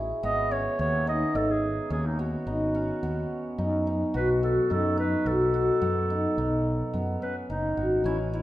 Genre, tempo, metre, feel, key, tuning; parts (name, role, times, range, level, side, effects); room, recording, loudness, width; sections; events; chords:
contemporary instrumental, chamber music in an uneven meter; 108 BPM; 7/4; straight; B mixolydian; A4 = 440 Hz
cimbalom; arpeggios; 0.0-8.4 s; B3 to G#4; -27 LUFS; equal
fretless electric bass; bass; 0.0-8.4 s; F#1 to F#2; -30 LUFS; equal
mellow clarinet; melody; 0.2-8.4 s; D#4 to D#5; -31 LUFS; right 2 dB
wet recital hall reverb, RT60 1.4 s; -24 LUFS; side -15 dB against mid
0.0-8.0 A section
0.2 G#m7; 4.1 B7